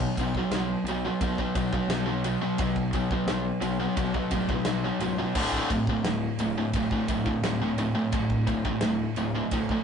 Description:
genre	heavy metal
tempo	87 BPM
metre	4/4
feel	straight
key	unclear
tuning	A4 = 440 Hz
part	high-gain distorted guitar	riff	0.0-9.8 s	D2 to F#3	-26 LUFS	equal	distortion
part	fuzz picked electric bass	bass	0.0-9.8 s	C#1 to D2	-33 LUFS	equal	overdrive
part	modern studio drum kit	drums	0.0-9.8 s	crash cymbal, kick drum, ride cymbal, snare drum	-32 LUFS	equal	none
room	light reverb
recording	rough rehearsal-room recording, warm saturation, nothing above 10.4 kHz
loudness	-25 LUFS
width	side -7 dB against mid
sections	0.0-9.8 A section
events	none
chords	0.0 B5; 5.4 D5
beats	0.51 1.20 1.90 | 2.59 3.28 3.97 4.67 | 5.36 6.05 6.75 7.44 | 8.13 8.83 9.52

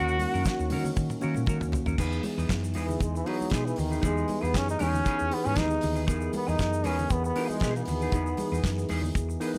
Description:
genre	disco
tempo	117 BPM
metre	4/4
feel	straight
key	unclear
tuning	A4 = 438 Hz
part	bright trombone	melody	0.0-9.0 s	D#3 to F#4	-33 LUFS	equal	none
part	mellow tine electric piano	accompaniment	0.0-9.6 s	D#3 to B4	-36 LUFS	equal	none
part	semi-hollow electric guitar	accompaniment	0.0-9.6 s	C#4 to B4	-39 LUFS	equal	subtle chorus
part	mellow French horn section	sustained chords	0.0-9.6 s	D#3 to G#4	-41 LUFS	equal	none
part	hollow-body short-scale fingered electric bass	bass	0.0-9.4 s	D#2 to D#3	-33 LUFS	equal	none
part	tube shaker	percussion	0.1-9.6 s	none	-50 LUFS	equal	none
part	damped 70s drum kit	drums	0.2-9.5 s	crash cymbal, hi-hat, kick drum, snare drum, toms	-34 LUFS	equal	none
part	congas	percussion	0.2-9.6 s	none	-42 LUFS	equal	none
room	light reverb, small room reverb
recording	none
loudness	-28 LUFS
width	mono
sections	0.0-2.0 A section; 2.0-9.6 B section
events	drum fill 1.0-2.0; trombone solo 2.0-9.6; tine electric piano fill 9.1-9.6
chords	0.0 D#m7; 2.0 Emaj7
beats	0.46 0.97 1.48 | 1.99 2.50 3.01 3.52 | 4.03 4.54 5.05 5.57 | 6.08 6.59 7.10 7.61 | 8.12 8.63 9.15

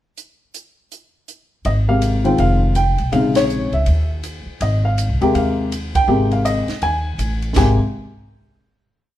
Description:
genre	jazz piano trio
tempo	162 BPM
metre	4/4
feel	swing 63% on 8ths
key	Ab major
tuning	A4 = 439 Hz
part	compact cocktail drum kit	drums	0.2-7.7 s	hi-hat, kick drum, ride cymbal, snare drum	-26 LUFS	right 2 dB	none
part	upright bass	bass	1.6-7.8 s	F1 to Eb2	-19 LUFS	equal	none
part	dark baby grand piano	melody	1.7-7.8 s	C3 to Ab5	-18 LUFS	left 1 dB	none
room	moderate stone room reverb, RT60 1.1 s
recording	band playing live in one room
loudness	-15 LUFS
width	side -13 dB against mid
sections	0.2-1.6 pickup bar; 1.6-7.6 A section; 7.6-9.0 final chord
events	band accent 3.3, 5.9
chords	0.2 N.C.; 1.6 Abmaj9; 2.4 Fm7; 3.1 Bbm11; 3.9 N.C.; 4.6 Abmaj9; 7.6 N.C.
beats	| 0.17 0.54 0.91 1.28 | 1.65 2.02 2.39 2.76 | 3.13 3.50 3.87 4.24 | 4.61 4.98 5.35 5.71 | 6.08 6.45 6.82 7.19 | 7.56

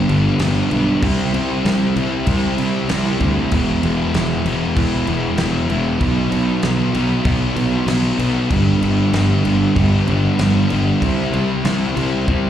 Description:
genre	quiet-loud alternative rock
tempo	96 BPM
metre	4/4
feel	straight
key	unclear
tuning	A4 = 440 Hz
part	overdriven semi-hollow guitar	riff	0.0-12.5 s	E2 to C4	-22 LUFS	right 10 dB	none
part	thick fuzz guitar	riff	0.0-12.5 s	G2 to E4	-19 LUFS	left 4 dB	distortion
part	fuzz fingered electric bass	bass	0.1-12.5 s	E1 to D2	-20 LUFS	equal	overdrive
part	loose indie drum kit	drums	0.1-12.4 s	crash cymbal, kick drum, snare drum, toms	-24 LUFS	equal	none
room	light reverb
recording	live gig heard through the venue's PA, club reverb, faint mains hum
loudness	-15 LUFS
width	side -10 dB against mid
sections	0.0-12.5 A section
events	drum fill 12.3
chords	0.0 G; 1.0 C; 3.5 E; 6.0 B; 8.5 G; 11.0 C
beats	0.40 | 1.03 1.65 2.27 2.89 | 3.52 4.14 4.76 5.39 | 6.01 6.63 7.26 7.88 | 8.51 9.13 9.76 10.39 | 11.02 11.64 12.28

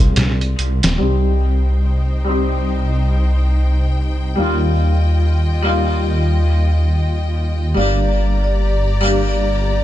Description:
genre	trip hop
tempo	71 BPM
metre	4/4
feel	swing 58% on 16ths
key	C minor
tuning	A4 = 440 Hz
part	harpsichord	accompaniment	0.0-9.8 s	G3 to G4	-22 LUFS	left 2 dB	harmonic tremolo, low-pass filter, tape echo
part	dark detuned saw bass	bass	0.0-9.8 s	Eb1 to Eb2	-16 LUFS	equal	tube saturation
part	trip hop sampler-style drum kit	drums	0.2-1.0 s	hi-hat, snare drum	-16 LUFS	equal	none
part	rich studio string section	sustained chords	1.0-9.8 s	Eb4 to Bb5	-27 LUFS	left 2 dB	none
part	vibraphone with medium mallets	melody	7.8-9.8 s	D5	-25 LUFS	left 1 dB	vintage 12-bit sampler grit, tape echo
room	small room reverb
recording	nothing above 10.8 kHz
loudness	-14 LUFS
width	side -13 dB against mid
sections	0.0-1.0 A section; 1.0-9.8 B section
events	filter sweep on harpsichord 1.0-9.8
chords	0.0 Fmadd9; 1.0 Cm; 4.4 Ebadd9; 7.8 Gm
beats	0.16 | 1.01 1.85 2.70 3.54 | 4.39 5.23 6.08 6.92 | 7.77 8.61 9.46

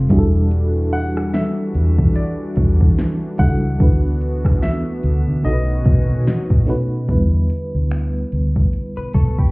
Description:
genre	contemporary R&B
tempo	73 BPM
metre	4/4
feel	swing 58% on 16ths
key	E dorian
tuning	A4 = 440 Hz
part	FM electric piano with tremolo	accompaniment	0.0-9.5 s	D3 to C#6	-24 LUFS	right 1 dB	none
part	warm analog pad	sustained chords	0.0-7.1 s	D#3 to F#4	-27 LUFS	left 1 dB	chorus
part	vintage muted fingered electric bass	bass	0.0-9.5 s	E1 to E3	-17 LUFS	equal	none
part	smooth R&B drum kit	drums	0.1-9.5 s	finger snaps, hi-hat, kick drum, rim click, snare drum	-17 LUFS	equal	none
part	bright concert grand piano	melody	0.9-6.6 s	D5 to F#5	-30 LUFS	equal	none
part	soft synth bell	texture	2.2-7.5 s	D5 to D#5	-42 LUFS	left 3 dB	none
part	direct-recorded clean electric guitar	arpeggios	9.0-9.5 s	G4 to B4	-29 LUFS	left 3 dB	none
room	little or no reverb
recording	heard muffled through a wall, club reverb, EQ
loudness	-15 LUFS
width	side -25 dB against mid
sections	0.0-7.1 A section; 7.1-9.5 B section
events	none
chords	0.1 Em11; 3.8 D69; 5.4 B9; 7.1 Em7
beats	| 0.51 1.34 2.16 2.98 | 3.80 4.62 5.45 6.27 | 7.09 7.91 8.73

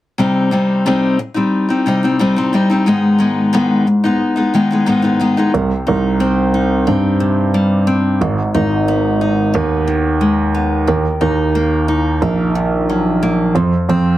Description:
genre	rock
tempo	90 BPM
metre	4/4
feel	straight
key	unclear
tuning	A4 = 440 Hz
part	picked steel-string acoustic guitar	arpeggios	0.2-14.2 s	F2 to Eb4	-14 LUFS	left 2 dB	none
part	dark baby grand piano	bass	5.5-14.2 s	Ab1 to G2	-15 LUFS	right 2 dB	none
room	light reverb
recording	heavily compressed radio sound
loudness	-13 LUFS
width	side -14 dB against mid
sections	0.2-5.5 A section; 5.5-14.2 B section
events	none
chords	0.2 Cm; 2.9 Abm; 5.5 Cm; 8.2 Abm; 10.9 Ebm; 13.6 F5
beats	| 0.18 0.85 1.52 2.19 | 2.86 3.53 4.20 4.87 | 5.54 6.20 6.87 7.54 | 8.21 8.88 9.54 10.21 | 10.88 11.55 12.22 12.88 | 13.55

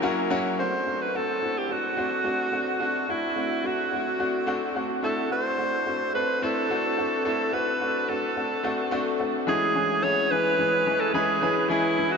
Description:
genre	pop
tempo	108 BPM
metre	4/4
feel	straight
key	unclear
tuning	A4 = 441 Hz
part	edgy alto saxophone	melody	0.0-12.2 s	E4 to C#5	-25 LUFS	right 1 dB	tape echo
part	clear baby grand piano	accompaniment	0.0-12.2 s	E3 to A#5	-27 LUFS	left 2 dB	none
room	wet huge ambient reverb, RT60 8.0 s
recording	dreamy mix soaked in reverb, nothing above 7.6 kHz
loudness	-23 LUFS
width	side -5 dB against mid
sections	0.6-9.5 A section; 9.5-12.2 B section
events	grand piano fill 0.0-0.6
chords	0.0 F#7; 0.6 D7; 9.5 C#m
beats	0.04 | 0.59 1.15 1.70 2.26 | 2.81 3.37 3.93 4.48 | 5.04 5.59 6.15 6.70 | 7.26 7.81 8.37 8.93 | 9.48 10.04 10.59 11.15 | 11.70

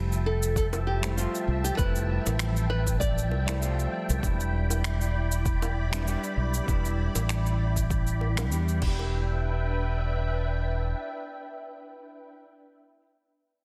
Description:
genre	sunset chillout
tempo	98 BPM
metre	4/4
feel	swing 54% on 16ths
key	E phrygian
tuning	A4 = 439 Hz
part	nylon-string guitar	melody	0.0-3.9 s	F4 to D5	-36 LUFS	equal	delay
part	hollow-body jazz guitar	accompaniment	0.0-13.1 s	G3 to G4	-39 LUFS	equal	low-pass filter, delay
part	soft string machine	sustained chords	0.0-12.3 s	F3 to B5	-38 LUFS	equal	phaser, ensemble chorus
part	mellow fretless electric bass	bass	0.0-10.9 s	E1 to E2	-30 LUFS	equal	subtle chorus
part	deep house drum kit	drums	0.1-9.0 s	cabasa, crash cymbal, finger snaps	-38 LUFS	equal	overdrive, soft clipping on snare
part	electronic kick drum	drums	0.6-9.0 s	none	-31 LUFS	equal	overdrive
part	bongos	percussion	0.7-9.1 s	none	-42 LUFS	equal	none
room	light reverb, digital ambience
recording	dense, heavily limited modern master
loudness	-28 LUFS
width	mono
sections	0.0-9.1 A section; 9.1-11.6 B section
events	none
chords	0.0 Fmaj9; 4.2 Em7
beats	0.56 1.17 | 1.78 2.39 3.00 3.62 | 4.23 4.84 5.45 6.07 | 6.68 7.29 7.90 8.51 | 9.13 9.74 10.35 10.96

